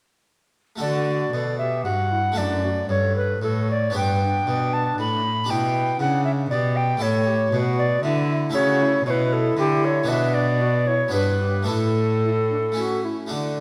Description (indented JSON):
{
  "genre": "classical, baroque-style sonata movement with continuo",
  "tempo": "116 BPM",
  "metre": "3/4",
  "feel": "rubato",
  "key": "D major",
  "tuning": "A4 = 441 Hz",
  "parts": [
    { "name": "mellow tenor recorder", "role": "melody", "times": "0.8-13.0 s", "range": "G4 to B5", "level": "-26 LUFS", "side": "equal", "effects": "none" },
    { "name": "mellow baroque flute", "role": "second line", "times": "0.8-13.6 s", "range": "D4 to D5", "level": "-31 LUFS", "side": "equal", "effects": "none" },
    { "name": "harpsichord", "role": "accompaniment", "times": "0.8-13.6 s", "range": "F#2 to A4", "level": "-31 LUFS", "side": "equal", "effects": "none" },
    { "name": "warm cello", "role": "bass", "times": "0.8-13.6 s", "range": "F#2 to D3", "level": "-27 LUFS", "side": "equal", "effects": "none" }
  ],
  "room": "wet recital hall reverb, RT60 1.3 s",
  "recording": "none",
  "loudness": "-22 LUFS",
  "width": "mono",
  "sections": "0.8-13.3 A section",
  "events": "none",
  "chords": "0.8 D; 2.4 D/F#; 4.0 G; 5.5 G/B; 7.0 A; 10.1 Bm; 11.1 Em7/G; 11.7 Asus4; 12.8 A",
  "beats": "| 0.81 1.33 1.85 | 2.37 2.89 3.41 | 3.95 4.47 4.98 | 5.49 6.00 6.51 | 7.01 7.52 8.03 | 8.55 9.06 9.58 | 10.08 10.60 11.13 | 11.67 12.22 12.77 | 13.31"
}